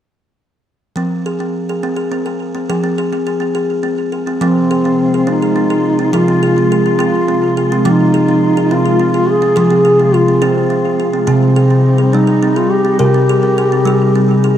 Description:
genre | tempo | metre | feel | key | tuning
world meditative | 70 BPM (dotted quarters) | 6/8 | straight | F minor | A4 = 439 Hz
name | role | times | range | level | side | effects
kalimba | arpeggios | 1.0-14.6 s | C3 to Bb4 | -14 LUFS | right 1 dB | tape echo
dark duduk | melody | 4.4-14.4 s | C4 to Ab4 | -14 LUFS | equal | tape echo
glassy FM pad | sustained chords | 4.4-14.6 s | C3 to F4 | -17 LUFS | left 1 dB | ensemble chorus, built-in reverb
room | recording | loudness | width
wet spring reverb, RT60 1.6 s, small room ambience | echo-heavy mix, cassette tape | -11 LUFS | side -10 dB against mid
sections
1.0-4.4 A section; 4.4-14.6 B section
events
none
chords
1.0 Fm; 11.3 Cm

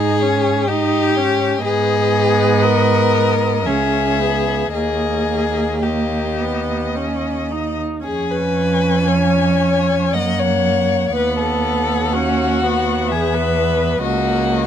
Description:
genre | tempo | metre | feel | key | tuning
classical, slow romantic movement for string quartet | 53-65 BPM | 3/4 | rubato | unclear | A4 = 440 Hz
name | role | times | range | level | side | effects
warm violin | melody | 0.0-14.7 s | C#5 to G#5 | -24 LUFS | left 8 dB | none
warm violin | second line | 0.0-14.7 s | F#4 to D#5 | -19 LUFS | left 4 dB | none
warm viola | accompaniment | 0.0-14.7 s | A#3 to D#4 | -22 LUFS | right 3 dB | none
rich cello | bass | 0.0-14.7 s | C#2 to G#2 | -20 LUFS | right 4 dB | none
room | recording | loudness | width
little or no reverb | close, detailed microphones | -15 LUFS | side -9 dB against mid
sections
0.0-14.7 A section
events
none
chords
0.0 D#7/G#; 1.7 G#m; 3.7 C#m; 4.7 D#; 8.1 C#/E#; 10.1 F#; 11.1 B/D#; 13.1 E5; 14.0 F#6/C#

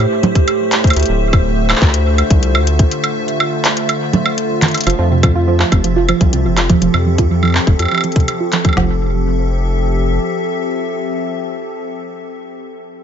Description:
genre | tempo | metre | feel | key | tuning
IDM | 123 BPM | 4/4 | straight | F major | A4 = 440 Hz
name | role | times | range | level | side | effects
icy glass pad | sustained chords | 0.0-12.3 s | A2 to E5 | -19 LUFS | equal | chorus, built-in reverb
round analog bass | bass | 0.0-10.2 s | D1 to F2 | -15 LUFS | equal | none
organic electronic drum kit | drums | 0.2-8.8 s | congas, handclaps, hi-hat, woodblock | -18 LUFS | right 2 dB | dub echo
organic electronic drum kit | drums | 0.4-8.9 s | kick drum, snare drum, toms | -12 LUFS | equal | none
warbly dusty pluck | arpeggios | 4.9-9.0 s | C3 to F4 | -17 LUFS | right 6 dB | chorus, tape echo
room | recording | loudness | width
light reverb | nothing above 7.6 kHz | -12 LUFS | side -8 dB against mid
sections
0.0-4.9 A section; 4.9-8.8 B section; 8.8-12.7 C section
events
break 2.9-4.9; drum fill 4.6; filter sweep on analog synth bass 4.9-8.8; filter sweep on synth pluck 4.9-8.8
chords
0.0 Am7; 1.0 Dm9; 4.9 Fmaj9

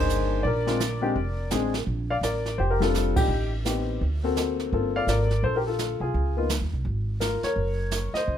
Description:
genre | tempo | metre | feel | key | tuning
jazz piano trio | 168 BPM | 4/4 | swing 63% on 8ths | Bb major | A4 = 439 Hz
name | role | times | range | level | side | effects
warm grand piano | melody | 0.0-8.4 s | Eb3 to F5 | -26 LUFS | left 3 dB | none
upright bass | bass | 0.0-8.4 s | F1 to Eb2 | -27 LUFS | right 1 dB | none
jazz brush drum kit | drums | 0.1-8.4 s | brushed snare drum, hi-hat, kick drum, ride cymbal, snare drum | -30 LUFS | right 3 dB | none
room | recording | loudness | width
light reverb | close, detailed microphones | -23 LUFS | side -10 dB against mid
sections
0.0-1.9 A section; 1.9-8.4 B section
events
band accent 3.1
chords
0.5 Bb9; 3.3 Am7b5; 4.0 D7b13; 4.7 Gm11; 6.1 Db6; 7.6 Gb

